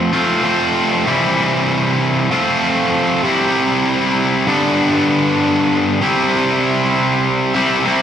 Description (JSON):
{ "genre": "rock", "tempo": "97 BPM", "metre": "4/4", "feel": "straight", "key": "C major", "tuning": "A4 = 440 Hz", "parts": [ { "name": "distorted electric guitar", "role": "solo", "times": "0.0-8.0 s", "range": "G2 to F4", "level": "-13 LUFS", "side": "equal", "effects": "overdrive, tape echo" } ], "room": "wet recital hall reverb, RT60 1.6 s", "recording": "big arena sound", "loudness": "-13 LUFS", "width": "side -9 dB against mid", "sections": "0.0-8.0 A section", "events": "none", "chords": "0.0 F; 1.1 C; 2.3 F; 3.2 C; 4.5 G; 6.0 C", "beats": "0.45 | 1.07 1.68 2.30 2.92 | 3.54 4.16 4.77 5.39 | 6.01 6.63 7.25 7.86" }